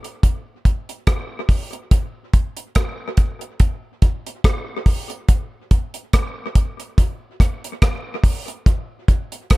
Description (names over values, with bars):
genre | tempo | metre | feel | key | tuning
reggae | 71 BPM | 4/4 | swing 56% on 16ths | none | none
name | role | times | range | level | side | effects
deep reggae drum kit | drums | 0.0-9.6 s | hi-hat, kick drum, rim click | -16 LUFS | equal | none
room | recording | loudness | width
little or no reverb | echo-heavy mix | -18 LUFS | side -21 dB against mid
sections
0.0-9.6 A section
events
none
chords
none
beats
0.23 1.07 | 1.92 2.76 3.60 4.45 | 5.29 6.13 6.97 7.82 | 8.66 9.50